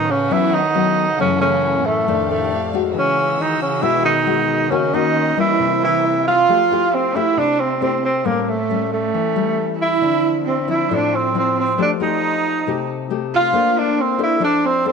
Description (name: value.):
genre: bossa nova.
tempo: 136 BPM.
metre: 4/4.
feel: straight.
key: F major from 6.5 s.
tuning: A4 = 440 Hz.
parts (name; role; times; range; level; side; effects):
breathy tenor saxophone; melody; 0.0-14.9 s; A3 to F4; -18 LUFS; right 1 dB; none.
warm cello; second line; 0.0-14.9 s; A2 to F4; -23 LUFS; right 13 dB; tape echo.
nylon-string guitar; accompaniment; 0.0-14.9 s; F2 to C5; -22 LUFS; left 10 dB; none.
warm studio violin section; sustained chords; 0.0-6.5 s; C4 to E6; -29 LUFS; right 1 dB; none.
room: moderate plate reverb, RT60 2.4 s.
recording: 1960s-style stereo with parts hard left and right.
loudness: -15 LUFS.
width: side -5 dB against mid.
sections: 0.0-6.5 A section; 6.5-14.9 B section.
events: none.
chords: 0.0 A69; 1.2 Gbm7; 2.1 F13; 3.0 Emaj9; 4.7 Ebm7; 5.6 C7; 6.5 Fmaj9; 8.2 A7b9; 10.0 Dm9; 11.8 F9; 13.5 Bbmaj9.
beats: 0.32 0.76 | 1.20 1.64 2.08 2.52 | 2.96 3.40 3.84 4.28 | 4.72 5.16 5.60 6.04 | 6.49 6.93 7.37 7.81 | 8.25 8.69 9.13 9.57 | 10.01 10.45 10.89 11.34 | 11.78 12.22 12.66 13.10 | 13.54 13.98 14.42 14.86.